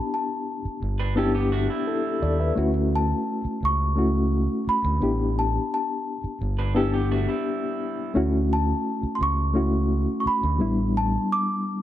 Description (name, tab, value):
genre	lush 1970s-style soul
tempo	86 BPM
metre	4/4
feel	straight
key	D major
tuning	A4 = 440 Hz
part	celesta	melody	0.0-11.8 s	A5 to D6	-27 LUFS	equal	none
part	reed electric piano	accompaniment	0.0-11.8 s	G3 to E5	-25 LUFS	left 2 dB	fast tremolo
part	overdriven fingered electric bass	bass	0.7-11.1 s	G1 to Eb2	-25 LUFS	right 1 dB	none
part	electric guitar through a small old amp	riff	1.0-8.1 s	G3 to B4	-32 LUFS	right 6 dB	none
room	light reverb, digital ambience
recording	none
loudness	-22 LUFS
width	side -12 dB against mid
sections	0.0-11.8 A section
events	none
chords	0.0 A7sus4; 2.6 Dmaj7; 5.0 A7sus4; 8.2 Dmaj7; 10.6 A7sus4